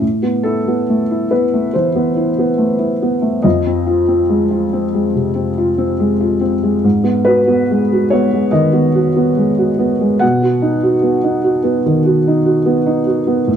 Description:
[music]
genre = neoclassical minimalist piano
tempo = 71 BPM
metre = 4/4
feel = rubato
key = unclear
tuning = A4 = 440 Hz
[part]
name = felt-muted upright piano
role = solo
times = 0.0-13.6 s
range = F2 to F#5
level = -12 LUFS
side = equal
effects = none
[sound]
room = moderate stone room reverb, RT60 1.1 s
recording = band playing live in one room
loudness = -12 LUFS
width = side -8 dB against mid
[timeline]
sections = 0.0-13.6 A section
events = none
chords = 0.0 Amadd9; 3.4 Fm7; 6.8 G#m7; 10.2 B

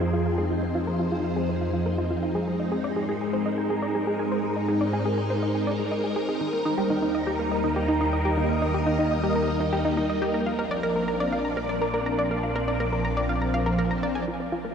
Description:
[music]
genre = ambient, sequencer-driven space music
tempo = 122 BPM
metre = 4/4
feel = straight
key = unclear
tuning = A4 = 440 Hz
[part]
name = phased string machine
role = sustained chords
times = 0.0-14.7 s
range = F3 to Eb5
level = -26 LUFS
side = equal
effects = ensemble chorus, phaser
[part]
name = analog pluck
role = riff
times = 0.0-14.7 s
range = Eb4 to Bb5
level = -28 LUFS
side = equal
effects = chorus, tape echo
[part]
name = analog drone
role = bass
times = 0.0-14.3 s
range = Bb1 to Ab2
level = -31 LUFS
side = equal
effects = chorus, phaser
[sound]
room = wet huge ambient reverb, RT60 7.2 s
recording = dark, warm production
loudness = -23 LUFS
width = side -7 dB against mid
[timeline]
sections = 0.0-14.3 A section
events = filter sweep on synth arpeggio sound 0.0-14.3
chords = 0.0 Fm7; 2.5 Abadd9; 6.4 Eb; 10.3 Bbadd9

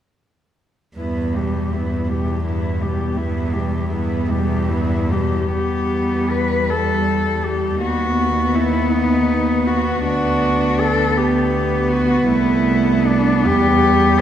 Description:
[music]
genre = classical, lyrical piece for cello ensemble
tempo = 47-56 BPM (dotted quarters)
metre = 6/8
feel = rubato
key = E minor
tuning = A4 = 440 Hz
[part]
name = dark cello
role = melody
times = 1.0-14.2 s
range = D4 to B4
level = -21 LUFS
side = left 3 dB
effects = none
[part]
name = warm cello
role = second line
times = 1.0-14.2 s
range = G3 to B3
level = -22 LUFS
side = right 2 dB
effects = none
[part]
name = warm cello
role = accompaniment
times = 1.0-14.2 s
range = G2 to D4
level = -22 LUFS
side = left 1 dB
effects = none
[part]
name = warm cello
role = bass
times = 1.0-14.2 s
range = C2 to E2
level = -21 LUFS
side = right 1 dB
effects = none
[sound]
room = wet scoring stage reverb, RT60 2.0 s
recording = heard from further back in the room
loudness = -16 LUFS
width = side -10 dB against mid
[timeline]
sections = 1.0-5.5 A section; 5.5-14.2 B section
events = none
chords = 1.0 Em; 7.8 B/D#; 10.1 Bm/D; 12.3 C

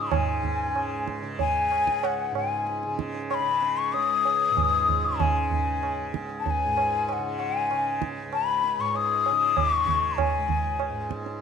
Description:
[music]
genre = indian classical, Hindustani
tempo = 96 BPM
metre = 4/4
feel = straight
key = unclear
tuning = A4 = 440 Hz
[part]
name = breathy hollow bansuri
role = melody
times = 0.0-11.1 s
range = F#5 to D#6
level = -24 LUFS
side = left 6 dB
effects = none
[part]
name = tanpura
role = drone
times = 0.0-11.4 s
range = C#2 to C#3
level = -33 LUFS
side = right 2 dB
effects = none
[part]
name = tabla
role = percussion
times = 0.1-11.4 s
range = none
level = -29 LUFS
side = right 7 dB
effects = none
[sound]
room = wet spring reverb, RT60 1.5 s, small room ambience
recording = 1960s-style stereo with parts hard left and right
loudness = -23 LUFS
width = side -7 dB against mid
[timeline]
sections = 0.1-11.4 A section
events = speeding up 0.0-11.4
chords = none

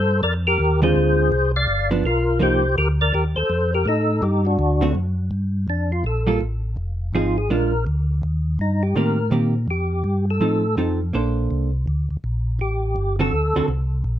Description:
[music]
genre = soul jazz organ trio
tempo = 165 BPM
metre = 4/4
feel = swing 64% on 8ths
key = G minor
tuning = A4 = 438 Hz
[part]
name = percussive tonewheel organ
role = melody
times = 0.0-13.7 s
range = D4 to F5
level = -22 LUFS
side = left 2 dB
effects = slow rotary speaker, chorus vibrato, plate reverb
[part]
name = mellow tonewheel organ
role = bass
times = 0.0-14.2 s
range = F1 to Bb2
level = -21 LUFS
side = equal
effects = chorus vibrato
[part]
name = vintage hollow-body jazz guitar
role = accompaniment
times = 0.8-2.6, 4.8-13.7 s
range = D3 to C5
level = -21 LUFS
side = right 3 dB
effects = none
[sound]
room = light reverb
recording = close, detailed microphones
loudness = -18 LUFS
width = side -11 dB against mid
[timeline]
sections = 0.0-5.3 A section; 5.3-14.2 B section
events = tonewheel organ solo 5.3-14.2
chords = 0.0 Bbmaj9; 1.0 Dm7b5; 1.7 G7; 2.4 Cm11; 3.9 Ebmaj7#11; 4.6 D7; 5.3 Gm9; 6.8 Fm7; 7.5 Bb7; 8.2 Eb6; 9.7 F7; 11.1 Bbmaj9; 12.6 Gsus24; 13.3 D7

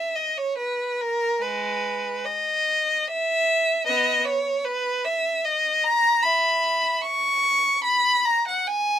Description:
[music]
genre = classical, free, expressive piece for unaccompanied violin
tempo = 74 BPM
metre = 3/4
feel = uneven beats, rubato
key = B major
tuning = A4 = 440 Hz
[part]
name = rich violin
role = solo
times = 0.0-9.0 s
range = G#3 to C#6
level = -20 LUFS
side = equal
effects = none
[sound]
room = light reverb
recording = minimal, uncompressed stereo recording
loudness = -20 LUFS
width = side -10 dB against mid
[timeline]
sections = 0.0-9.0 A section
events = none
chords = none

